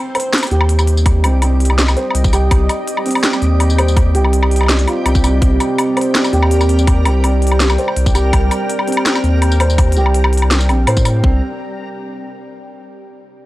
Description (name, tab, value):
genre	half-time drum and bass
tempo	165 BPM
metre	4/4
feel	half-time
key	C minor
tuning	A4 = 440 Hz
part	deep dark ambient pad	sustained chords	1.0-12.7 s	C4 to G5	-22 LUFS	equal	chorus, built-in reverb, sidechain pumping
part	felt-muted upright piano	arpeggios	0.0-11.4 s	C3 to C5	-20 LUFS	right 2 dB	tape echo
part	backwards swelling texture	texture	0.0-11.3 s	G3 to Bb4	-28 LUFS	equal	built-in reverb
part	drum and bass drum kit	drums	0.1-11.1 s	hi-hat, snare drum, tambourine, woodblock	-18 LUFS	left 1 dB	small room reverb
part	saturated sub bass	bass	0.5-11.4 s	Bb1 to A2	-13 LUFS	equal	tube saturation
part	electronic kick drum	drums	1.1-11.3 s	none	-14 LUFS	equal	small room reverb
room	digital ambience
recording	dry, gritty hardware recording, cassette tape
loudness	-11 LUFS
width	side -17 dB against mid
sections	0.0-11.2 A section; 11.2-12.7 B section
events	drop 0.0-11.2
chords	0.0 Cmadd9